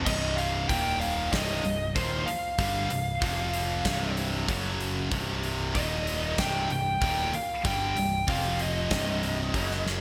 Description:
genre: hard rock.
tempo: 95 BPM.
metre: 4/4.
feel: straight.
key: unclear.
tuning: A4 = 440 Hz.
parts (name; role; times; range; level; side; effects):
distorted electric guitar; riff; 0.0-10.0 s; C2 to G3; -36 LUFS; equal; overdrive.
high-gain distorted guitar; riff; 0.0-10.0 s; C2 to G3; -36 LUFS; equal; distortion.
picked electric bass; bass; 0.0-10.0 s; C1 to G1; -36 LUFS; equal; none.
lead guitar through a small cranked amp; melody; 0.1-9.8 s; C5 to G5; -33 LUFS; equal; overdrive.
huge arena drum kit; drums; 0.1-10.0 s; crash cymbal, hi-hat, kick drum, snare drum; -35 LUFS; equal; gated reverb.
room: moderate lush hall reverb, RT60 1.8 s.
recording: bright 1980s-style digital production.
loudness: -28 LUFS.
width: mono.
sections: 0.1-10.0 A section.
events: none.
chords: 0.1 Cm; 0.7 Eb5; 1.3 Cm; 3.2 F5; 3.9 C5; 4.5 F#5; 5.1 C5; 5.7 Eb5; 6.4 Cm; 8.3 F5; 8.9 Cm.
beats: | 0.06 0.69 1.32 1.96 | 2.59 3.22 3.85 4.49 | 5.12 5.75 6.38 7.01 | 7.65 8.28 8.91 9.54.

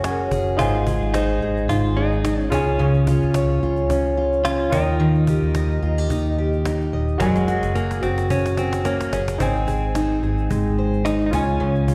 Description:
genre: acoustic pop.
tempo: 109 BPM.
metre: 4/4.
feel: swing 55% on 16ths.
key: Ab major.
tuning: A4 = 437 Hz.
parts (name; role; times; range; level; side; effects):
direct-recorded clean electric guitar; second line; 0.0-11.9 s; Ab3 to Ab4; -30 LUFS; equal; none.
fingerpicked steel-string acoustic guitar; accompaniment; 0.0-11.9 s; Ab2 to Eb5; -24 LUFS; equal; none.
warm concert grand piano; accompaniment; 0.0-11.9 s; Eb4 to Ab5; -31 LUFS; equal; slapback echo.
vintage muted fingered electric bass; bass; 0.0-11.9 s; Eb1 to Eb2; -26 LUFS; equal; none.
cajon; drums; 0.0-11.9 s; none; -31 LUFS; equal; none.
room: light reverb.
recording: live gig heard through the venue's PA, recital hall reverb.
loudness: -21 LUFS.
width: mono.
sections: 0.0-9.4 A section; 9.4-11.9 B section.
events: drum fill 7.2-9.4.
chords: 0.0 Gbadd9; 0.6 Ab; 2.5 Db; 4.7 Ebadd9; 7.2 Gbadd9; 9.4 Ab; 11.3 Db.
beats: 0.04 | 0.59 1.14 1.69 2.24 | 2.79 3.35 3.90 4.45 | 5.00 5.55 6.10 6.65 | 7.20 7.75 8.30 8.85 | 9.40 9.95 10.51 11.06 | 11.61.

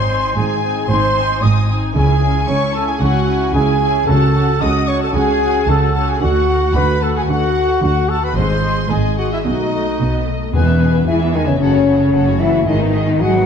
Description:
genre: cinematic, heroic adventure film score.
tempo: 112 BPM.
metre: 4/4.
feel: straight.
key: C# harmonic minor.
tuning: A4 = 441 Hz.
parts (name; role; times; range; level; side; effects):
warm symphonic violin section; melody; 0.0-13.5 s; B4 to G#5; -28 LUFS; left 4 dB; none.
warm symphonic violin section; second line; 0.0-13.5 s; D#4 to D#6; -25 LUFS; left 3 dB; none.
warm symphonic viola section; accompaniment; 0.0-13.5 s; F#3 to G#4; -24 LUFS; right 1 dB; none.
dark trumpet section; stabs; 0.0-10.3 s; D#4 to D#5; -18 LUFS; equal; none.
rich symphonic double bass section; bass; 0.0-13.5 s; F#1 to E2; -19 LUFS; right 2 dB; none.
warm symphonic cello section; bass; 0.0-13.5 s; G#2 to F#3; -21 LUFS; right 2 dB; none.
timpani; percussion; 2.0-4.8, 8.4-11.3 s; E2 to C#3; -22 LUFS; left 2 dB; none.
mellow clarinet; second line; 10.5-13.5 s; B3 to F#4; -25 LUFS; equal; none.
silver concert flute; second line; 10.5-13.5 s; B4 to F#5; -24 LUFS; left 2 dB; none.
warm French horn section; sustained chords; 10.5-13.5 s; B3 to F#4; -16 LUFS; left 5 dB; none.
room: wet scoring stage reverb, RT60 1.8 s.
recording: dark, warm production.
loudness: -13 LUFS.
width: side -7 dB against mid.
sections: 0.0-10.5 A section; 10.5-13.5 B section.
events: none.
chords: 0.0 G#; 2.0 C#m; 4.1 F#m/C#; 6.2 D; 8.4 G#; 9.5 B7; 10.5 E; 11.6 F#m; 12.7 G#m.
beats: 0.37 0.90 1.43 | 1.96 2.49 3.02 3.56 | 4.09 4.62 5.16 5.69 | 6.22 6.76 7.29 7.83 | 8.37 8.91 9.45 10.00 | 10.54 11.07 11.61 12.14 | 12.68 13.22.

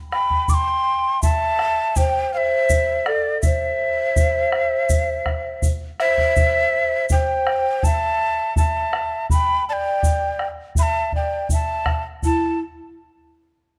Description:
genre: andean folk, Andean ensemble.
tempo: 82 BPM.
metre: 4/4.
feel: straight.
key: unclear.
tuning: A4 = 443 Hz.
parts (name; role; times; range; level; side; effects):
breathy hollow large quena; melody; 0.1-12.6 s; D5 to D6; -23 LUFS; equal; none.
mellow hollow polished pan flute; second line; 0.1-12.6 s; E4 to G5; -26 LUFS; equal; none.
bombo; percussion; 0.1-12.6 s; none; -24 LUFS; equal; none.
egg shaker; percussion; 0.5-12.6 s; none; -35 LUFS; equal; none.
room: light reverb.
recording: dark, warm production.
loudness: -20 LUFS.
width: mono.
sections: 0.0-12.2 A section; 12.2-13.8 B section.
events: none.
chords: none.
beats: | 0.49 1.23 1.96 2.69 | 3.43 4.16 4.89 5.63 | 6.36 7.10 7.83 8.57 | 9.30 10.04 10.77 11.51 | 12.24.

